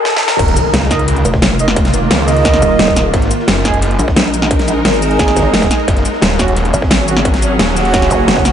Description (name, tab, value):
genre	dark technical drum and bass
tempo	175 BPM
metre	4/4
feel	straight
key	Eb minor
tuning	A4 = 440 Hz
part	swarming drone	sustained chords	0.0-8.5 s	Eb3 to Bb4	-18 LUFS	equal	built-in reverb, sidechain pumping
part	riser, impact and zap	sound effects	0.0-1.8, 8.1-8.2 s	none	-19 LUFS	equal	none
part	dubstep drum kit	drums	0.1-8.5 s	cabasa, crash cymbal, hi-hat, snare drum	-15 LUFS	equal	high-pass filter on snare, studio ambience, high-pass filter on hats, high-pass filter on perc, high-pass filter on cymbals
part	snarling distorted saw bass	bass	0.4-8.1 s	Eb1 to Db2	-16 LUFS	equal	distortion, overdrive
part	crunchy breakbeat drum kit	drums	0.4-8.5 s	hi-hat, ride cymbal, snare drum	-26 LUFS	equal	none
part	electronic kick drum	drums	0.4-8.4 s	none	-16 LUFS	equal	distortion, high-pass filter on kick, studio ambience
part	mellow brass ensemble	stabs	0.9-8.5 s	Gb3 to Eb5	-18 LUFS	right 4 dB	digital delay
part	pulsing pluck wobble bass	bass	1.3-8.5 s	Eb1 to Bb1	-16 LUFS	equal	chorus
room	light reverb, small room ambience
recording	high-pass filter, nothing above 10.8 kHz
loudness	-10 LUFS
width	side -9 dB against mid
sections	0.4-8.5 A section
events	break 0.0-0.4; riser 0.0-0.4; drum fill 0.1-0.4; drop 0.4-8.5; impact 0.4-1.8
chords	0.4 Ebsus2; 3.1 Ab5; 5.9 Gb5